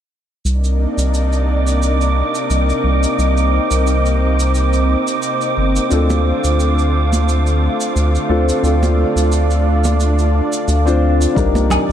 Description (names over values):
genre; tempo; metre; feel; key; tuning
sunset chillout; 88 BPM; 4/4; swing 55% on 16ths; C dorian; A4 = 439 Hz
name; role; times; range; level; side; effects
lush unison pad; sustained chords; 0.4-11.9 s; C3 to D5; -19 LUFS; equal; chorus, shimmer reverb
round analog bass; bass; 0.5-11.9 s; G1 to D2; -15 LUFS; equal; none
cabasa and woodblock; drums; 0.5-11.9 s; none; -26 LUFS; right 1 dB; none
wind-like tuned noise texture; texture; 0.9-11.4 s; D6; -25 LUFS; right 6 dB; built-in reverb, shimmer reverb
dark concert grand piano; accompaniment; 5.9-11.9 s; C4 to C5; -20 LUFS; moving between left 5 dB and right 2 dB; auto-pan, ping-pong delay, shimmer reverb
congas; percussion; 6.1-11.9 s; none; -23 LUFS; right 3 dB; none
electronic kick drum; drums; 11.4-11.5 s; none; -19 LUFS; equal; none
room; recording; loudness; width
moderate lush hall reverb, RT60 2.0 s; dark, warm production; -13 LUFS; side -10 dB against mid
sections
0.5-11.4 A section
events
none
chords
0.5 Cm9; 5.9 Dm7; 11.4 Cm9